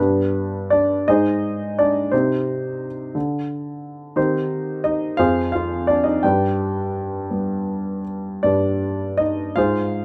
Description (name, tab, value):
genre	classical, lyrical solo piano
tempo	52-59 BPM (dotted quarters)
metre	6/8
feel	rubato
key	unclear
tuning	A4 = 437 Hz
part	dark grand piano	solo	0.0-10.0 s	F2 to G5	-21 LUFS	equal	none
room	light reverb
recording	close, detailed microphones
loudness	-21 LUFS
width	mono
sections	0.0-10.0 A section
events	none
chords	0.0 G; 1.1 Ab; 2.1 Cm; 3.2 N.C.; 4.2 Cm/Eb; 5.2 Fm7; 6.2 G